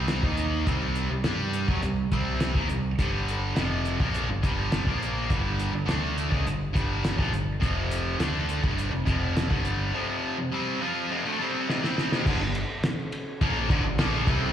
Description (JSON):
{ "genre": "classic rock", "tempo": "104 BPM", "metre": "4/4", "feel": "straight", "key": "unclear", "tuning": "A4 = 438 Hz", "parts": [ { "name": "distorted electric guitar", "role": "riff", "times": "0.0-14.5 s", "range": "F2 to G4", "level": "-27 LUFS", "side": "equal", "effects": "overdrive" }, { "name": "growling picked electric bass", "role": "bass", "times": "0.0-14.5 s", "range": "F1 to G2", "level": "-29 LUFS", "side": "equal", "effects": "overdrive" }, { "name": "cloth-damped thuddy drum kit", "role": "drums", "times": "0.1-14.4 s", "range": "crash cymbal, hi-hat, kick drum, ride cymbal, snare drum", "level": "-28 LUFS", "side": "equal", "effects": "none" } ], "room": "light reverb", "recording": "live gig heard through the venue's PA, recital hall reverb", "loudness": "-24 LUFS", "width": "side -10 dB against mid", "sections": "0.0-12.2 A section; 12.2-14.5 B section", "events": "drum fill 11.7-12.2", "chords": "0.0 C5; 3.0 G5; 7.6 F5; 12.2 G5", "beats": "0.09 | 0.67 1.25 1.83 2.41 | 2.99 3.57 4.15 4.73 | 5.31 5.89 6.47 7.04 | 7.62 8.20 8.78 9.36 | 9.94 10.52 11.10 11.67 | 12.25 12.82 13.40 13.98" }